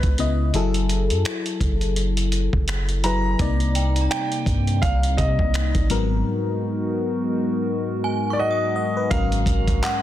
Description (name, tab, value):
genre	contemporary R&B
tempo	84 BPM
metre	4/4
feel	swing 58% on 16ths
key	unclear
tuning	A4 = 442 Hz
part	warm concert grand piano	melody	0.0-10.0 s	Cb5 to Bb5	-26 LUFS	equal	digital delay
part	FM electric piano	accompaniment	0.0-10.0 s	Ab2 to Gb5	-25 LUFS	left 4 dB	chorus
part	long sustained 808-style bass	bass	0.0-9.8 s	Gb1 to C3	-22 LUFS	equal	none
part	dusty soul sampler-style drum kit	drums	0.0-10.0 s	finger snaps, handclaps, hi-hat, kick drum	-24 LUFS	equal	soft clipping on snare
part	hollow soft pad	sustained chords	3.4-10.0 s	C3 to Bb4	-27 LUFS	right 1 dB	chorus
part	synth chime	texture	3.8-10.0 s	Gb5 to Eb6	-33 LUFS	right 5 dB	ensemble chorus, digital delay
room	digital ambience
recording	dense, heavily limited modern master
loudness	-19 LUFS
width	side -12 dB against mid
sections	0.0-9.1 A section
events	break 6.3-9.1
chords	0.0 Dbm9; 0.5 Gbm9; 3.4 Cm9; 5.9 Abm9; 9.1 Ab9sus4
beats	| 0.54 1.25 1.97 2.68 | 3.40 4.11 4.82 5.54 | 6.25 6.97 7.68 8.39 | 9.11 9.82